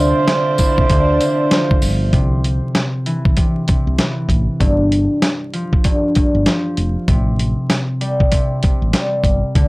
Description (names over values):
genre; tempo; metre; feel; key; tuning
hip hop, boom-bap hip-hop; 97 BPM; 4/4; swing 61% on 16ths; C major; A4 = 439 Hz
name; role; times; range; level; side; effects
concert harp; accompaniment; 0.0-9.7 s; G2 to E4; -18 LUFS; left 1 dB; cassette tape, high-pass filter, low-pass filter
dark studio string section; sustained chords; 0.0-2.1 s; D3 to E5; -27 LUFS; equal; high-pass filter, low-pass filter
mellow horn section; stabs; 0.0-1.8 s; A3 to C5; -19 LUFS; right 4 dB; high-pass filter, low-pass filter, tape echo
woody fretless electric bass; bass; 0.0-9.7 s; F1 to D2; -18 LUFS; equal; none
dusty soul sampler-style drum kit; drums; 0.3-9.7 s; hi-hat, kick drum, snare drum; -16 LUFS; equal; none
tambourine; percussion; 0.6-2.0 s; none; -30 LUFS; left 1 dB; none
room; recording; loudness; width
light reverb; dry, gritty hardware recording, transformer saturation, vinyl crackle, faint mains hum; -14 LUFS; side -22 dB against mid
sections
0.0-2.1 A section; 2.1-9.7 B section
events
none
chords
0.0 Dm9; 2.1 C; 4.6 Fsus2; 7.1 Am7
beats
0.28 0.90 1.51 | 2.13 2.75 3.37 3.99 | 4.61 5.22 5.84 6.46 | 7.08 7.70 8.32 8.94 | 9.55